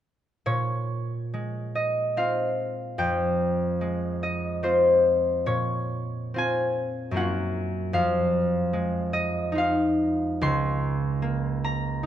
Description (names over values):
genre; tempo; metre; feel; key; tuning
classical, solo harp piece; 72 BPM; 3/4; uneven beats, rubato; Bb minor; A4 = 440 Hz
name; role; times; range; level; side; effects
concert harp; solo; 0.5-12.1 s; Db2 to C6; -23 LUFS; equal; none
room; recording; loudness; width
light reverb; close, detailed microphones; -23 LUFS; side -11 dB against mid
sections
0.5-12.1 A section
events
none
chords
0.5 Bbm9; 3.0 Fm9; 5.5 Bbmadd9; 7.2 Gb; 7.9 Fm7; 10.4 Db69